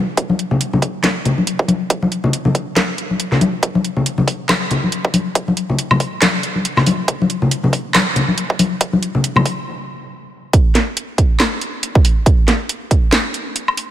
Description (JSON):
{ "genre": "dubstep", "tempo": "139 BPM", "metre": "4/4", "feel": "swing 57% on 16ths, half-time", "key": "none", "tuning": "none", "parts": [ { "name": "electronic kick drum", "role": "drums", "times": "0.2-13.0 s", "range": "none", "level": "-14 LUFS", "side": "right 2 dB", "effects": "high-pass filter on kick" }, { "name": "garage drum kit", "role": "drums", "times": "0.2-13.9 s", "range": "handclaps, hi-hat, snare drum, woodblock", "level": "-18 LUFS", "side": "right 1 dB", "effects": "high-pass filter on hats, high-pass filter on snare, high-pass filter on perc, high-pass filter on room" }, { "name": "congas", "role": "percussion", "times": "0.3-9.4 s", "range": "none", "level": "-17 LUFS", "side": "left 2 dB", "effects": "none" } ], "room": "moderate lush hall reverb, RT60 2.7 s", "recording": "none", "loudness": "-14 LUFS", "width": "side -12 dB against mid", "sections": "0.0-10.5 A section; 10.5-13.9 B section", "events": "build-up 0.0-10.5; stop 9.7-10.5; drop 10.5-13.9", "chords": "none", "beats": "| 0.17 0.61 1.04 1.47 | 1.90 2.33 2.77 3.20 | 3.63 4.06 4.49 4.92 | 5.36 5.79 6.22 6.65 | 7.08 7.51 7.95 8.38 | 8.81 9.24 9.67 10.10 | 10.54 10.97 11.40 11.83 | 12.26 12.69 13.12 13.56" }